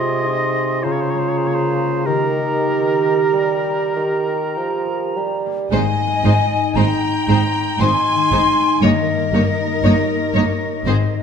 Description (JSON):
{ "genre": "classical", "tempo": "47-60 BPM", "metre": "3/4", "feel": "rubato", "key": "Ab major", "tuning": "A4 = 440 Hz", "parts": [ { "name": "clear oboe", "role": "second line", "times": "0.0-5.2 s", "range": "Bb4 to Eb5", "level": "-25 LUFS", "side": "right 2 dB", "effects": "none" }, { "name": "hollow concert flute", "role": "second line", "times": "0.0-11.2 s", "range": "Eb5 to C6", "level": "-22 LUFS", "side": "left 2 dB", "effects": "none" }, { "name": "mellow clarinet", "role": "second line", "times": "0.0-5.4 s", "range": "G4 to Ab4", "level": "-27 LUFS", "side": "right 3 dB", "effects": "none" }, { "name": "warm bassoon", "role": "accompaniment", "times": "0.0-5.7 s", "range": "C3 to G3", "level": "-23 LUFS", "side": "right 4 dB", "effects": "none" }, { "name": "warm French horn section", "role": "sustained chords", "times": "0.0-5.1 s", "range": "Eb4 to G4", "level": "-22 LUFS", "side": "right 4 dB", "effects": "none" }, { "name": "concert harp", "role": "arpeggios", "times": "0.0-11.2 s", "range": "G2 to Ab5", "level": "-23 LUFS", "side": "left 6 dB", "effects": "none" }, { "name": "rich symphonic violin section", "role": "melody", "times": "5.7-10.9 s", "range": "C5 to Db5", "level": "-28 LUFS", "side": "left 3 dB", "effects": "none" }, { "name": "rich symphonic violin section", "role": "second line", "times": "5.7-11.2 s", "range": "Bb4 to Ab5", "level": "-25 LUFS", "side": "equal", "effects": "none" }, { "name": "rich symphonic viola section", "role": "accompaniment", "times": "5.7-10.9 s", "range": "Ab3 to Ab4", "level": "-23 LUFS", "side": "right 2 dB", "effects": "none" }, { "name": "rich symphonic cello section", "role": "bass", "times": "5.7-10.9 s", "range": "G2 to Ab2", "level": "-21 LUFS", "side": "right 2 dB", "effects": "none" }, { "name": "rich symphonic double bass section", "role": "bass", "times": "5.7-10.9 s", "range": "G1 to Ab1", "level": "-24 LUFS", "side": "right 3 dB", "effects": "none" } ], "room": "wet recital hall reverb, RT60 1.4 s", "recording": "none", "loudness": "-15 LUFS", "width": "side -7 dB against mid", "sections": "0.0-5.7 A section; 5.7-11.2 B section", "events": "none", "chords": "0.0 Ab/C; 0.8 Bbm7/Db; 2.1 Eb; 5.7 Ab; 8.8 Eb7/G" }